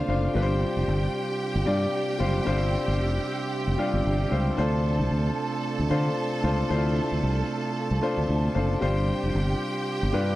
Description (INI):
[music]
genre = disco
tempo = 113 BPM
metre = 4/4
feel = swing 56% on 16ths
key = unclear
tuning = A4 = 440 Hz
[part]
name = clear studio string section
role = second line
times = 0.0-10.4 s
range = F4 to A5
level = -33 LUFS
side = right 2 dB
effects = slapback echo
[part]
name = bright baby grand piano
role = accompaniment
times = 0.0-10.4 s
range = G3 to D5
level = -28 LUFS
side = left 3 dB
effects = none
[part]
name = tonewheel organ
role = sustained chords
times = 0.0-10.4 s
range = C3 to E5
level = -32 LUFS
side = right 4 dB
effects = slow rotary speaker
[part]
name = fingered electric bass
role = bass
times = 0.1-10.3 s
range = F1 to D3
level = -25 LUFS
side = equal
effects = none
[sound]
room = little or no reverb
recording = dry, close 1970s-style studio recording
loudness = -23 LUFS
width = side -16 dB against mid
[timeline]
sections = 0.0-10.4 A section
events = none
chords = 0.3 G7sus4; 4.6 Dm7; 8.8 G7sus4